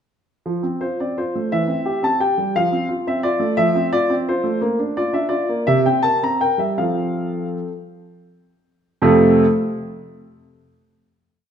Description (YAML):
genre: classical-period piano sonatina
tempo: 52-58 BPM (dotted quarters)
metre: 6/8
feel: rubato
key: F major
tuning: A4 = 440 Hz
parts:
  - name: warm baby grand piano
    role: solo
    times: 0.5-9.4 s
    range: F2 to Bb5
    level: -17 LUFS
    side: equal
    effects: none
room: wet recital hall reverb, RT60 1.7 s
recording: minimal, uncompressed stereo recording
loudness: -17 LUFS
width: side -8 dB against mid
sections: 0.5-9.0 A section; 9.0-11.2 final chord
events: none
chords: 0.5 F; 1.5 C/E; 2.5 F; 4.6 Bb; 5.7 C5; 6.8 F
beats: | 0.46 1.51 | 2.55 3.58 | 4.62 5.68 | 6.78 7.90 | 9.04